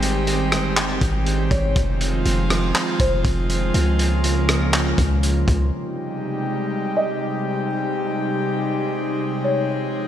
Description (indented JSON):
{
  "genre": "hip hop, atmospheric cloud-rap",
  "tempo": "121 BPM",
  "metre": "4/4",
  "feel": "half-time",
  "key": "Ab major",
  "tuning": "A4 = 441 Hz",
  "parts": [
    { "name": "airy breathy pad", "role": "sustained chords", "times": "0.0-10.1 s", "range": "C3 to Ab4", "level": "-22 LUFS", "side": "equal", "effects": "chorus, sidechain pumping" },
    { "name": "warm 808-style bass", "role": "bass", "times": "0.0-5.7 s", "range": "F1 to Db2", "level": "-21 LUFS", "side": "equal", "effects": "none" },
    { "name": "crunchy breakbeat drum kit", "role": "drums", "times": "0.0-5.6 s", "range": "handclaps, hi-hat, kick drum, rim click", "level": "-22 LUFS", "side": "equal", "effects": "none" },
    { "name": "felt-muted upright piano", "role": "melody", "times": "1.5-3.7, 7.0-9.7 s", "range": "C5 to Eb5", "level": "-26 LUFS", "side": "left 1 dB", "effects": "analog chorus, analog delay" }
  ],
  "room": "moderate lush hall reverb, RT60 1.9 s, small room reverb",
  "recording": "dreamy mix soaked in reverb",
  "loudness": "-18 LUFS",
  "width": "side -10 dB against mid",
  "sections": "0.0-5.7 A section; 5.7-10.1 B section",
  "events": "none",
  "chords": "0.0 Abmaj7; 1.8 Fm7; 3.7 Db6; 5.7 Abmaj7"
}